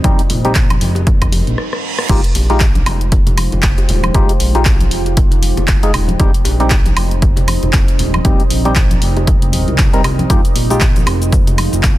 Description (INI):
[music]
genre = deep house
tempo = 117 BPM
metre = 4/4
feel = swing 58% on 16ths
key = F minor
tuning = A4 = 441 Hz
[part]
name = deep dark ambient pad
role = sustained chords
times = 0.0-12.0 s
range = G3 to Eb5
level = -23 LUFS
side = right 2 dB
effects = chorus, built-in reverb, sidechain pumping
[part]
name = percussive organ stab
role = stabs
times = 0.0-10.8 s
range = G3 to Bb4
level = -20 LUFS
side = left 1 dB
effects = chorus, sidechain pumping, analog delay
[part]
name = smooth synth bass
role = bass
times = 0.0-12.0 s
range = Eb1 to C2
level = -17 LUFS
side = equal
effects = sidechain pumping
[part]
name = deep house drum kit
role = drums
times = 0.0-12.0 s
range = cabasa, crash cymbal, handclaps, hi-hat, rim click, woodblock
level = -20 LUFS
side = equal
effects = none
[part]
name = electronic kick drum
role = drums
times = 0.0-12.0 s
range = none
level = -13 LUFS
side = equal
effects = none
[part]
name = bongos and congas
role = percussion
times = 0.0-11.8 s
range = none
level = -24 LUFS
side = left 1 dB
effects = none
[part]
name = reverse cymbal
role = sound effects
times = 1.5-2.1 s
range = none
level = -24 LUFS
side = right 6 dB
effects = none
[sound]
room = little or no reverb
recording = dense, heavily limited modern master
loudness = -11 LUFS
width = side -16 dB against mid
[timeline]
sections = 0.0-2.1 A section; 2.1-12.0 B section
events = reverse cymbal 1.5-2.1; drum fill 1.6-2.1; stop 1.6-2.1; band accent 2.0; drop 2.1-12.0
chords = 0.0 Cm; 2.1 Fm9; 6.2 Cm; 10.3 Fm9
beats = | 0.04 0.56 1.07 1.58 | 2.09 2.61 3.12 3.63 | 4.14 4.66 5.17 5.68 | 6.20 6.71 7.22 7.74 | 8.25 8.76 9.27 9.79 | 10.30 10.81 11.32 11.84